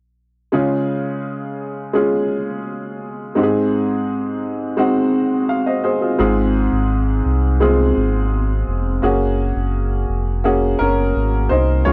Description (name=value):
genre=pop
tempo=85 BPM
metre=4/4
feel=straight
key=Db major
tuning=A4 = 440 Hz
part: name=clear upright piano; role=accompaniment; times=0.5-11.9 s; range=Ab2 to F5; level=-20 LUFS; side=equal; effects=none
part: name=sub bass with octave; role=bass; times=6.2-11.9 s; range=F1 to Db2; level=-21 LUFS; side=equal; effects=none
room=little or no reverb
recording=dry, close 1970s-style studio recording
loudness=-18 LUFS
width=mono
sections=0.5-11.9 A section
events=none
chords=0.5 Db; 3.4 Ab; 6.2 Fm/Ab; 9.0 Gbadd9